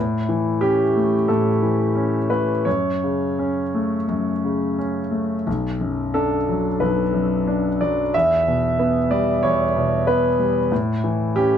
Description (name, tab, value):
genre	neoclassical minimalist piano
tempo	82-94 BPM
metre	4/4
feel	rubato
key	B minor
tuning	A4 = 440 Hz
part	warm concert grand piano	solo	0.0-11.6 s	B1 to E5	-18 LUFS	equal	none
room	light reverb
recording	dark, warm production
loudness	-18 LUFS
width	side -8 dB against mid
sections	0.0-11.6 A section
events	none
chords	0.0 A; 2.7 F#m; 5.5 Bm; 8.1 Em; 10.7 A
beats	0.61 1.29 1.96 | 2.66 3.38 4.09 4.78 | 5.47 6.16 6.82 7.47 | 8.14 8.79 9.43 10.07 | 10.71 11.35